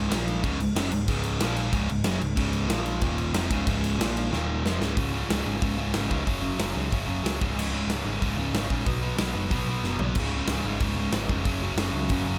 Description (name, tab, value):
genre	punk rock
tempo	185 BPM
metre	4/4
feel	straight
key	Db major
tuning	A4 = 439 Hz
part	distorted electric guitar	riff	0.0-12.4 s	Db2 to Cb4	-30 LUFS	equal	distortion
part	overdriven picked electric bass	bass	0.0-12.4 s	Db1 to Db2	-33 LUFS	equal	none
part	big rock drum kit	drums	0.1-12.2 s	crash cymbal, hi-hat, kick drum, snare drum, toms	-31 LUFS	equal	none
room	little or no reverb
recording	none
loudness	-27 LUFS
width	mono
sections	0.0-5.0 A section; 5.0-12.4 B section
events	drum fill 4.3-5.0, 9.8-10.2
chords	0.1 Bb5; 0.4 Db5; 1.4 Bb5; 1.7 Db5; 2.7 Bb5; 3.0 Eb5; 3.3 Db; 4.0 Bb5; 4.3 Eb5; 4.6 Db; 5.0 Db5; 6.3 Gb5; 7.4 Db5; 8.9 Cb5; 10.2 Db5; 11.5 Gb5